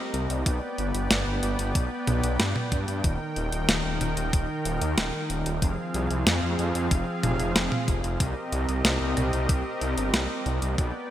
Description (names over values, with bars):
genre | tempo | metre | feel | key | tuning
synthwave | 93 BPM | 4/4 | straight | C minor | A4 = 436 Hz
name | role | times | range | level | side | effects
soft supersaw | sustained chords | 0.0-11.1 s | Eb3 to G5 | -29 LUFS | equal | sidechain pumping
wide detuned saw bass | bass | 0.1-10.9 s | Eb1 to G2 | -28 LUFS | equal | chorus, tube saturation
clean 12-bit digital drum machine | drums | 0.1-10.9 s | hi-hat, snare drum, toms | -28 LUFS | equal | none
electronic kick drum | drums | 0.5-10.9 s | none | -26 LUFS | equal | none
room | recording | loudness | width
moderate lush hall reverb, RT60 2.5 s | bright 1980s-style digital production | -24 LUFS | side -12 dB against mid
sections
0.0-11.1 A section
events
none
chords
0.5 G; 3.0 Eb; 5.6 Fm; 8.2 Cm7